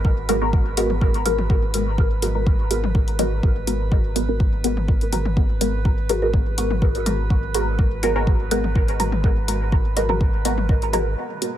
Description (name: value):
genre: dub techno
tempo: 124 BPM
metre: 4/4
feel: straight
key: G# minor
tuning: A4 = 440 Hz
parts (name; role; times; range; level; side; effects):
- pure sine sub bass; bass; 0.0-11.2 s; G#1; -24 LUFS; equal; tube saturation, sidechain pumping
- electronic kick drum; drums; 0.0-10.8 s; none; -19 LUFS; equal; none
- drifting glass-harmonics texture; texture; 0.0-11.6 s; G#4 to B4; -34 LUFS; right 9 dB; chorus, built-in reverb, sidechain pumping
- filtered dub chord stab; stabs; 0.3-11.5 s; G#3 to A#4; -24 LUFS; equal; phaser, sidechain pumping, dub echo
- electronic hi-hat; drums; 0.3-11.5 s; none; -28 LUFS; left 3 dB; overdrive
- electronic toms; percussion; 0.3-11.0 s; none; -33 LUFS; left 4 dB; overdrive, sidechain pumping on toms, dub echo
- deep dark ambient pad; sustained chords; 11.3-11.6 s; B3 to A#4; -47 LUFS; left 1 dB; chorus, built-in reverb, sidechain pumping
room: little or no reverb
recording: none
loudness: -18 LUFS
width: side -11 dB against mid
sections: 0.0-11.2 A section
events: none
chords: 0.0 G#m9